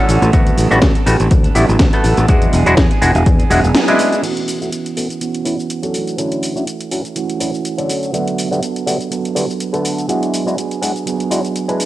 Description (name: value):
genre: filtered disco house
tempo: 123 BPM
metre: 4/4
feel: swing 55% on 16ths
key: A major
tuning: A4 = 441 Hz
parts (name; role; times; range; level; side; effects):
- bright clav; accompaniment; 0.0-11.9 s; D3 to B4; -18 LUFS; left 1 dB; phaser, sidechain pumping, low-pass filter
- clean electric guitar; riff; 0.0-11.9 s; E3 to A4; -21 LUFS; right 6 dB; sidechain pumping, low-pass filter
- fingered electric bass; bass; 0.1-3.7 s; E1 to E2; -15 LUFS; left 1 dB; sidechain pumping, low-pass filter
- house drum kit; drums; 0.1-11.9 s; cabasa, crash cymbal, hi-hat, snare drum; -21 LUFS; left 1 dB; sidechain pumping on perc, small room ambience, cassette tape, sidechain pumping on hats, sidechain pumping on cymbals
- electronic kick drum; drums; 0.3-3.4 s; none; -13 LUFS; equal; small room ambience, cassette tape
room: light reverb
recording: home recording on cassette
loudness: -13 LUFS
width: side -15 dB against mid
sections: 0.0-4.2 A section; 4.2-11.9 B section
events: band accent 3.8; filter sweep 4.2-11.9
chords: 0.3 Gmaj9; 2.3 E9; 4.2 A69; 5.9 Dmaj9; 8.1 Gmaj9/D; 10.1 E9